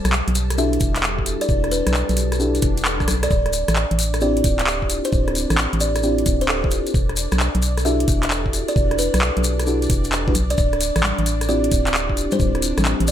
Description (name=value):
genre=UK garage, two-step garage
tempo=132 BPM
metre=4/4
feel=swing 67% on 16ths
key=unclear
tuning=A4 = 439 Hz
part: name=soft string machine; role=sustained chords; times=0.0-13.1 s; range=G3 to A5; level=-31 LUFS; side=equal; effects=ensemble chorus, sidechain pumping
part: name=shekere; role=percussion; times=0.0-13.1 s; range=none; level=-29 LUFS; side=left 4 dB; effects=none
part: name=organ-like FM bass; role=bass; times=0.1-13.1 s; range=D1 to B1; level=-22 LUFS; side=equal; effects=tube saturation
part: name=garage drum kit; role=drums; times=0.1-13.1 s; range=congas, handclaps, hi-hat, rim click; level=-24 LUFS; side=equal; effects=gated reverb
part: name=buzzing kalimba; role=melody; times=0.6-13.1 s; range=A4 to E5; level=-26 LUFS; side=equal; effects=ping-pong delay
part: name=FM electric piano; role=stabs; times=0.6-13.1 s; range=C4 to B4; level=-24 LUFS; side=left 1 dB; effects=chorus
part: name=electronic kick drum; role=drums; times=0.8-12.5 s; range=none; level=-22 LUFS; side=equal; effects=none
part: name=swell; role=sound effects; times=2.5-3.3 s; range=none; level=-32 LUFS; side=left 1 dB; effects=none
room=light reverb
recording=bright 1980s-style digital production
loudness=-17 LUFS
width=side -10 dB against mid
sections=0.0-13.1 A section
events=swell 2.5-3.3; drum fill 3.0-3.3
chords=0.0 Em11; 3.3 Dm11; 6.9 Em11; 10.6 Dm11